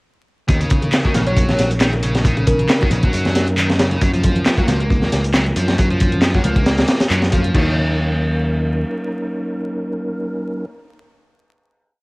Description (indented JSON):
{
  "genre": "breakbeat, breaks",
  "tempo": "136 BPM",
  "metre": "4/4",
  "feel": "swing 55% on 16ths",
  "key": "Eb minor",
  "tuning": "A4 = 441 Hz",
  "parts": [
    { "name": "mellow tonewheel organ", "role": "sustained chords", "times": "0.5-10.7 s", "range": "Gb3 to Bb4", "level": "-26 LUFS", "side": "equal", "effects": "chorus vibrato, fast rotary speaker, vintage 12-bit sampler grit, sidechain pumping, cassette tape" },
    { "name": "overdriven electric guitar", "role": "riff", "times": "0.5-7.8 s", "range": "Db3 to Bb3", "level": "-23 LUFS", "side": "equal", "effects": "tube saturation, vintage 12-bit sampler grit, cassette tape" },
    { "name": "overdriven picked electric bass", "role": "bass", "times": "0.5-8.8 s", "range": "Bb1 to Gb2", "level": "-19 LUFS", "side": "equal", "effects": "none" },
    { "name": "crunchy breakbeat drum kit", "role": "drums", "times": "0.5-7.6 s", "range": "crash cymbal, hi-hat, kick drum, snare drum", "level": "-18 LUFS", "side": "equal", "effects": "cassette tape" },
    { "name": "punchy analog drum machine", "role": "drums", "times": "0.5-7.5 s", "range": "handclaps, hi-hat", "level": "-26 LUFS", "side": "equal", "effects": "cassette tape" },
    { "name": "bongos and congas", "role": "percussion", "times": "0.8-7.5 s", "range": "none", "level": "-28 LUFS", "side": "left 1 dB", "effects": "none" },
    { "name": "orchestra-hit-like synth stab", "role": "stabs", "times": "1.0-10.7 s", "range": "Bb3 to F5", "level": "-28 LUFS", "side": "left 1 dB", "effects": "built-in reverb, cassette tape, analog delay" },
    { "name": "bell-like FM electric piano", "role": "melody", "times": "1.3-2.8 s", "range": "Bb4 to Db5", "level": "-23 LUFS", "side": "equal", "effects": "chorus, phaser, old record sound, cassette tape, analog delay" }
  ],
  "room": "light reverb, small room ambience",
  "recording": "home recording on cassette, vinyl crackle",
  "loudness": "-15 LUFS",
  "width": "side -26 dB against mid",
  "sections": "0.5-7.5 drop; 7.5-11.1 final chord",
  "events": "drop 0.5-7.5",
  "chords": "0.5 Ebm7; 4.0 Gbmaj7; 7.5 Ebm7",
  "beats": "| 0.49 0.93 1.37 1.81 | 2.25 2.69 3.13 3.58 | 4.02 4.46 4.90 5.34 | 5.78 6.22 6.66 7.11 | 7.55 7.99 8.43 8.87 | 9.31 9.75 10.19 10.63"
}